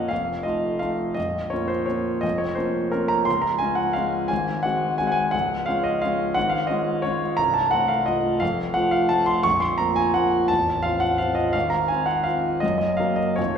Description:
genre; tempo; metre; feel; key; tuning
classical, piano waltz; 173 BPM; 3/4; uneven beats, rubato; unclear; A4 = 439 Hz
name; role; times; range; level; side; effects
warm concert grand piano; solo; 0.0-13.6 s; A0 to Db6; -20 LUFS; equal; none
room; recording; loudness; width
wet recital hall reverb, RT60 1.7 s; recorded in a church or concert hall; -20 LUFS; side -7 dB against mid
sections
0.0-13.6 A section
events
none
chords
0.1 F7; 1.2 Bbm; 3.3 Db; 4.3 Ab7; 5.3 Db; 7.4 F7/C; 9.5 Bb5; 10.5 F/A; 11.5 Fm/Ab; 12.6 Gb6

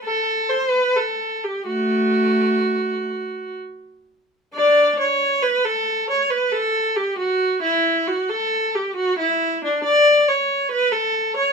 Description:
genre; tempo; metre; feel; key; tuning
classical, baroque-style suite movement for unaccompanied viola; 62-70 BPM; 3/4; rubato; unclear; A4 = 441 Hz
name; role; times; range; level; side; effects
clear viola; solo; 0.0-11.5 s; A3 to D5; -18 LUFS; equal; none
room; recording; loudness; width
light reverb; close, detailed microphones; -17 LUFS; side -5 dB against mid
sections
0.0-4.5 A section; 4.5-11.5 B section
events
none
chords
none

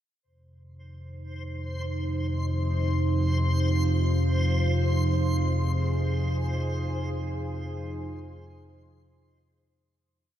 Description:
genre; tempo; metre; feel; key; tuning
dark ambient drone; free time; none; none; F minor; A4 = 440 Hz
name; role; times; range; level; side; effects
deep dark ambient pad; sustained chords; 1.3-10.0 s; Eb4 to Ab4; -33 LUFS; right 3 dB; chorus, built-in reverb, shimmer reverb
deep rumbling drone; drone; 1.0-10.2 s; F2 to C3; -26 LUFS; equal; built-in reverb, lush chorus
backwards swelling texture; texture; 1.3-10.0 s; C5; -35 LUFS; left 1 dB; built-in reverb, shimmer reverb
room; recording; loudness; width
wet cathedral reverb, RT60 6.3 s; cassette tape; -24 LUFS; side -11 dB against mid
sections
0.2-10.0 A section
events
fade-out 5.1-10.0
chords
0.2 Fm

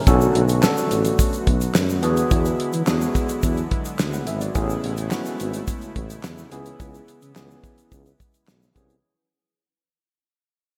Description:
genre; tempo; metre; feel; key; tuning
early-eighties boogie funk; 107 BPM; 4/4; straight; unclear; A4 = 438 Hz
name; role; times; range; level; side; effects
brassy analog pad; sustained chords; 0.0-9.0 s; C#3 to F#4; -33 LUFS; equal; chorus, tremolo
overdriven tine electric piano; accompaniment; 0.1-8.9 s; B3 to F#5; -27 LUFS; equal; lush chorus
mellow tuba; bass; 0.1-9.0 s; G#1 to E3; -26 LUFS; equal; none
damped 70s drum kit; drums; 0.1-9.0 s; handclaps, hi-hat, kick drum, snare drum; -25 LUFS; equal; gated reverb
tube shaker; percussion; 0.1-9.0 s; none; -40 LUFS; equal; none
room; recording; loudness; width
moderate lush hall reverb, RT60 2.3 s; bright 1980s-style digital production; -21 LUFS; mono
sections
0.1-9.0 A section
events
fade-out 0.1-9.0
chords
0.1 Bm9; 2.0 E9; 4.6 Amaj9; 6.5 C#m7

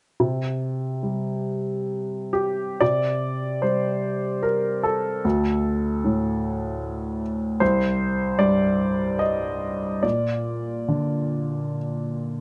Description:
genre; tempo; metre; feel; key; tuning
neoclassical minimalist piano; 61-78 BPM; 3/4; rubato; C dorian; A4 = 439 Hz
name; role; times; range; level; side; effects
warm baby grand piano; solo; 0.2-12.4 s; C2 to Eb5; -24 LUFS; equal; none
room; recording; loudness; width
light reverb; nothing above 11.0 kHz; -24 LUFS; mono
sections
0.2-2.8 A section; 2.8-12.4 B section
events
none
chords
0.2 C5; 5.2 D5; 7.6 Cm; 10.0 Bb

